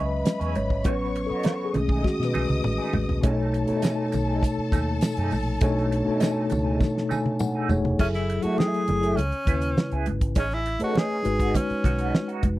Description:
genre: lush 1970s-style soul.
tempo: 101 BPM.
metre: 4/4.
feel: straight.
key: unclear.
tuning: A4 = 440 Hz.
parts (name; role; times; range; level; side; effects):
dark studio string section; second line; 0.0-7.7 s; A4 to D#6; -35 LUFS; left 3 dB; none.
mellow tine electric piano; accompaniment; 0.0-12.6 s; B2 to G#5; -26 LUFS; left 1 dB; fast stereo tremolo.
electric guitar through a small old amp; riff; 0.0-12.6 s; G#3 to D#5; -34 LUFS; right 6 dB; wah, tremolo.
vintage muted fingered electric bass; bass; 0.0-12.6 s; F1 to B2; -28 LUFS; equal; none.
damped 70s drum kit; drums; 0.3-12.6 s; crash cymbal, hi-hat, kick drum, snare drum, toms; -24 LUFS; equal; none.
congas; percussion; 0.3-12.6 s; none; -32 LUFS; right 3 dB; none.
tambourine; percussion; 3.8-7.8 s; none; -46 LUFS; left 8 dB; none.
clear tenor saxophone; melody; 8.0-12.4 s; C#4 to G#4; -28 LUFS; equal; none.
room: little or no reverb.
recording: dry, close 1970s-style studio recording.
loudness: -22 LUFS.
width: side -16 dB against mid.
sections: 0.0-3.2 A section; 3.2-8.0 B section; 8.0-12.6 C section.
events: tine electric piano solo 0.0-3.2; drum fill 2.0-3.2, 6.8-8.0; tine electric piano fill 6.8-8.0.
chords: 0.0 E6; 0.9 A69; 3.2 B13; 8.0 F#m9; 9.2 C#m7; 10.4 Amaj9#11; 11.3 B69.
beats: 0.26 | 0.85 1.45 2.05 2.64 | 3.24 3.83 4.43 5.02 | 5.62 6.21 6.80 7.40 | 7.99 8.59 9.18 9.77 | 10.36 10.96 11.55 12.14.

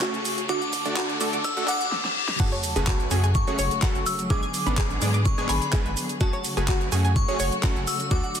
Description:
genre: progressive house.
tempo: 126 BPM.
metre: 4/4.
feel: straight.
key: F# minor.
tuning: A4 = 440 Hz.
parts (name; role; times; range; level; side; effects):
glassy synth bell; melody; 0.0-8.4 s; A5 to E6; -31 LUFS; left 2 dB; chorus, phaser, dub echo.
rich symphonic string section; sustained chords; 0.0-8.4 s; C#3 to A4; -33 LUFS; left 2 dB; sidechain pumping.
analog pluck; arpeggios; 0.0-8.3 s; F#4 to G#6; -31 LUFS; right 1 dB; chorus, sidechain pumping, dub echo.
supersaw stab; stabs; 0.0-8.2 s; G#2 to D5; -31 LUFS; right 3 dB; sidechain pumping.
electronic kick drum; drums; 0.0-8.2 s; none; -25 LUFS; equal; overdrive, high-pass filter on kick, high-pass filter on room.
pop drum kit; drums; 0.0-8.4 s; crash cymbal, handclaps, hi-hat, shaker, snare drum; -30 LUFS; right 1 dB; overdrive.
riser, reverse cymbal and sub drop; sound effects; 0.0-4.3 s; none; -31 LUFS; left 3 dB; none.
round analog bass; bass; 2.4-8.2 s; F#1 to G#2; -25 LUFS; equal; sidechain pumping.
room: moderate lush hall reverb, RT60 1.9 s.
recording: dense, heavily limited modern master, high-pass filter.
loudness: -22 LUFS.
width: side -8 dB against mid.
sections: 0.0-2.4 A section; 2.4-8.4 B section.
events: build-up 0.0-2.4; riser 0.0-2.4; filter sweep on synth pluck 0.0-2.4; filter sweep on string section 0.0-2.4; reverse cymbal 1.4-2.4; drum fill 1.9-2.4; drop 2.4-8.4; impact 2.4-4.3.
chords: 0.5 D; 2.4 F#madd9; 4.3 G#dim; 6.2 F#madd9.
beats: 0.02 | 0.49 0.97 1.45 1.92 | 2.40 2.87 3.35 3.83 | 4.30 4.78 5.25 5.73 | 6.21 6.68 7.16 7.63 | 8.11.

